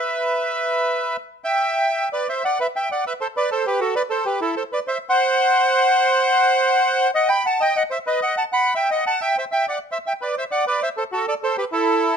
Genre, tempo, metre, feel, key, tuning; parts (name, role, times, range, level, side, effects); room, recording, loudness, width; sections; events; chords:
tango; 131 BPM; 4/4; rubato; E minor; A4 = 443 Hz
bandoneon; solo; 0.0-12.2 s; E4 to B5; -18 LUFS; right 1 dB
light reverb; close, detailed microphones; -18 LUFS; side -7 dB against mid
0.0-1.7 A section; 1.7-12.2 B section
0.0 E5; 1.7 Em; 3.5 Amadd9; 5.3 N.C.; 7.1 B; 9.0 C; 10.8 Am